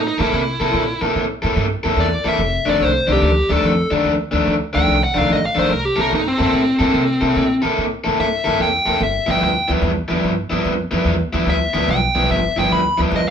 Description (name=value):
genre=electric blues shuffle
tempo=145 BPM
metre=4/4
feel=swing 68% on 8ths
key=C mixolydian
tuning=A4 = 440 Hz
part: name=dark smooth lead guitar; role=melody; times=0.0-13.3 s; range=C4 to B5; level=-19 LUFS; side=equal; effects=overdrive
part: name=upright bass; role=bass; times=0.0-13.3 s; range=F1 to C3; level=-22 LUFS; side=equal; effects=none
part: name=overdriven electric guitar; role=riff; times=0.2-13.2 s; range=F2 to A4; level=-18 LUFS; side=left 1 dB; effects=none
room=wet studio reverb, RT60 0.6 s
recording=band playing live in one room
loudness=-15 LUFS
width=side -8 dB against mid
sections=0.0-13.3 A section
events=lead electric guitar solo 0.0-13.3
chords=0.0 C6; 2.4 F13; 5.7 C6; 9.0 G6